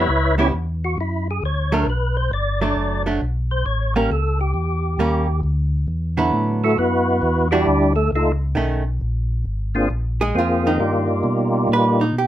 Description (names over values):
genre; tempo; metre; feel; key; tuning
jazz; 134 BPM; 4/4; swing 66% on 8ths; D major; A4 = 436 Hz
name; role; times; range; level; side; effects
percussive tonewheel organ; melody; 0.0-12.1 s; G3 to E5; -20 LUFS; equal; slow rotary speaker, overdrive, chorus vibrato
archtop guitar, miked and amplified; accompaniment; 0.0-12.3 s; D3 to B4; -21 LUFS; right 3 dB; none
mellow tonewheel organ; bass; 0.0-12.3 s; F#1 to B2; -21 LUFS; equal; chorus vibrato, slow rotary speaker
room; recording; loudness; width
moderate small room reverb, RT60 0.5 s; none; -18 LUFS; side -12 dB against mid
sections
0.0-9.0 A section; 9.0-12.3 A section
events
tonewheel organ solo 0.0-9.0; hollow-body jazz guitar solo 9.0-12.3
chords
0.1 C#m7b5; 1.0 Dmaj9#11; 1.9 Bm7; 3.7 A7b9; 5.4 D69; 7.2 Em9; 8.1 Faug7; 9.0 Bb7sus2; 10.8 G7alt